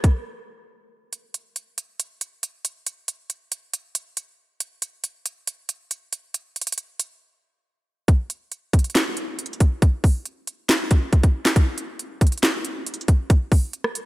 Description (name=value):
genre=hip hop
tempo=138 BPM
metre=4/4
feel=half-time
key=none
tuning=none
part: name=trap drum kit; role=drums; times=0.0-14.1 s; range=handclaps, hi-hat, kick drum, rim click, snare drum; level=-19 LUFS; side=equal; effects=overdrive
room=light reverb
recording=none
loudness=-21 LUFS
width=side -18 dB against mid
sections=0.0-1.1 A section; 1.1-8.1 B section; 8.1-14.1 C section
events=break 0.3-1.1, 7.2-8.1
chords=none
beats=0.26 0.69 | 1.13 1.56 2.00 2.43 | 2.87 3.30 3.73 4.17 | 4.60 5.04 5.47 5.91 | 6.34 6.78 7.21 7.65 | 8.08 8.52 8.95 9.39 | 9.82 10.26 10.69 11.13 | 11.56 11.99 12.43 12.87 | 13.30 13.73